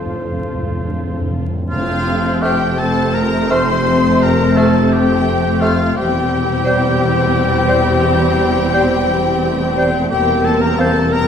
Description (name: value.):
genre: classical, slow romantic movement for symphony orchestra.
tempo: 49-60 BPM (dotted quarters).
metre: 12/8.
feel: rubato.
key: F major.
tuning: A4 = 435 Hz.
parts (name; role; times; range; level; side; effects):
rich studio violin section; melody; 0.0-11.3 s; C5 to C6; -22 LUFS; left 6 dB; none.
bright silver concert flute; second line; 0.0-11.0 s; F5 to G6; -28 LUFS; left 1 dB; none.
mellow clarinet; second line; 0.0-10.9 s; A4 to C5; -26 LUFS; left 1 dB; none.
warm oboe; second line; 0.0-11.3 s; F4 to C5; -23 LUFS; right 1 dB; none.
warm studio violin section; second line; 0.0-11.3 s; F4 to C5; -25 LUFS; left 3 dB; none.
mellow bassoon; accompaniment; 0.0-10.9 s; F3 to Bb3; -26 LUFS; right 2 dB; none.
warm studio viola section; accompaniment; 0.0-11.3 s; G3 to F4; -21 LUFS; equal; none.
dark French horn section; sustained chords; 0.0-11.3 s; C4 to C5; -21 LUFS; left 5 dB; none.
rich studio cello section; bass; 0.0-11.3 s; E2 to F2; -21 LUFS; right 1 dB; none.
rich studio double bass section; bass; 0.0-11.3 s; E1 to F1; -22 LUFS; right 2 dB; none.
timpani; percussion; 0.0-2.8 s; F2; -23 LUFS; equal; none.
clear trombone section; sustained chords; 1.7-11.3 s; C3 to A3; -24 LUFS; right 2 dB; none.
room: wet concert hall reverb, RT60 1.8 s.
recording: minimal, uncompressed stereo recording, vinyl crackle.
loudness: -13 LUFS.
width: side -8 dB against mid.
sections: 0.0-1.7 A section; 1.7-11.3 B section.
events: timpani fill 0.0-1.7.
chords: 0.0 F; 6.0 C/E; 10.1 C7/E.